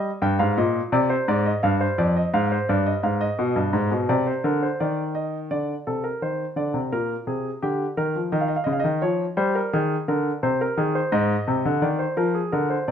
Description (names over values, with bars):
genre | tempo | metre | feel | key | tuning
classical, baroque-style two-part invention for grand piano | 85 BPM | 4/4 | straight | unclear | A4 = 440 Hz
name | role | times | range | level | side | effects
warm concert grand piano | solo | 0.0-12.9 s | F2 to G5 | -21 LUFS | equal | none
room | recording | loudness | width
moderate stone room reverb, RT60 1.0 s | none | -21 LUFS | side -8 dB against mid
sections
0.0-5.5 A section; 5.5-12.9 B section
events
none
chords
0.0 Cm/G; 1.3 Fm; 2.7 G7; 4.1 Cm; 5.5 D5; 6.9 Gm/Bb; 8.3 Eb7; 9.7 Ab